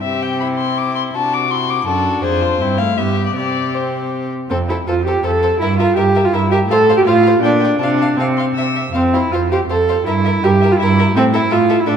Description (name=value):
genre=quick classical-period movement for string quartet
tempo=162 BPM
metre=3/4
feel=rubato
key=C major, F major from 4.5 s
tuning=A4 = 439 Hz
part: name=dark violin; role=melody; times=0.0-11.9 s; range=A4 to E6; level=-22 LUFS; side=left 7 dB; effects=none
part: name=rich viola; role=accompaniment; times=0.0-12.0 s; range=A3 to A4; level=-16 LUFS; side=right 1 dB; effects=none
part: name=rich cello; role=bass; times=0.0-12.0 s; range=F2 to C3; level=-19 LUFS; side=right 3 dB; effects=none
part: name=warm violin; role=second line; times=0.1-11.9 s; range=E4 to F5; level=-25 LUFS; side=left 4 dB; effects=none
room=moderate concert hall reverb, RT60 2.3 s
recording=none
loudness=-13 LUFS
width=side -7 dB against mid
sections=0.0-4.5 A section; 4.5-12.0 B section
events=none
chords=0.0 C; 1.2 D7/C; 2.2 Fm; 2.6 C/G; 3.0 G; 3.4 C5; 4.5 F; 5.6 Edim/G; 6.7 F/A; 7.4 Gm/Bb; 7.8 F/C; 8.6 C; 8.9 F; 10.1 Edim/G; 11.2 A5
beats=| 0.04 0.41 0.78 | 1.15 1.52 1.88 | 2.24 2.60 2.97 | 3.36 3.74 4.12 | 4.50 4.87 5.24 | 5.60 5.96 6.32 | 6.68 7.05 7.42 | 7.80 8.18 8.56 | 8.94 9.32 9.69 | 10.06 10.42 10.79 | 11.15 11.51 11.88